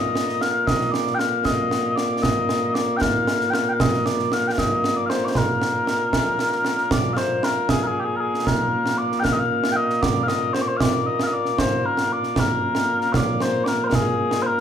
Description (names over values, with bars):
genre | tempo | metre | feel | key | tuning
scottish traditional, Scottish pipe music | 77 BPM (dotted quarters) | 6/8 | straight | Bb mixolydian | A4 = 443 Hz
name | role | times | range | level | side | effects
mellow small bagpipes | melody | 0.0-14.6 s | Bb2 to G5 | -21 LUFS | left 1 dB | none
concert snare drum and concert bass drum | drums | 0.2-14.6 s | none | -24 LUFS | right 2 dB | none
room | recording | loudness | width
moderate large studio reverb, RT60 0.8 s | band playing live in one room | -19 LUFS | side -8 dB against mid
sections
0.0-6.9 A section; 6.9-14.6 B section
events
none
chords
none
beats
| 0.68 1.46 | 2.24 3.02 | 3.80 4.58 | 5.36 6.13 | 6.91 7.69 | 8.47 9.25 | 10.03 10.81 | 11.59 12.37 | 13.15 13.93